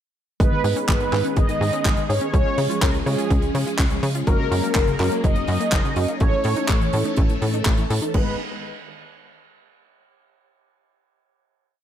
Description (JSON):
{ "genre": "italo disco", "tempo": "124 BPM", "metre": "4/4", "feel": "straight", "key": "G# dorian", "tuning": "A4 = 438 Hz", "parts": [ { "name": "mellow synth brass", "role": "melody", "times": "0.4-8.4 s", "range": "G#4 to D#5", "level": "-26 LUFS", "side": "equal", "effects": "chorus, ping-pong delay" }, { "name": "phased string machine", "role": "sustained chords", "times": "0.4-8.4 s", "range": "D#3 to A4", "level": "-28 LUFS", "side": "equal", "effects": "ensemble chorus, phaser" }, { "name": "wide unison pluck", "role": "arpeggios", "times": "0.4-8.4 s", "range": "C#3 to C#5", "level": "-31 LUFS", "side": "left 3 dB", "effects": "ping-pong delay" }, { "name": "dark grand piano", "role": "stabs", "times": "0.4-8.3 s", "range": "G#3 to C#5", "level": "-30 LUFS", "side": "right 2 dB", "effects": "ping-pong delay" }, { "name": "tight sequencer bass", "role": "bass", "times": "0.4-8.4 s", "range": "F#1 to C#3", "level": "-24 LUFS", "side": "equal", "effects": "none" }, { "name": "electronic kick drum", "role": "drums", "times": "0.4-8.2 s", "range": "none", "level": "-20 LUFS", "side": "equal", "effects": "studio reverb" }, { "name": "tight funk drum kit", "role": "drums", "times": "0.4-8.2 s", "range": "crash cymbal, handclaps, hi-hat", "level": "-29 LUFS", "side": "right 1 dB", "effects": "studio reverb, gated reverb" } ], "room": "small room ambience", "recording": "none", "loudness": "-18 LUFS", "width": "side -10 dB against mid", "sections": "0.4-8.1 chorus; 8.1-10.1 final chord", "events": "none", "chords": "0.4 G#m; 2.3 C#; 4.3 F#add9; 6.2 A; 8.1 G#m" }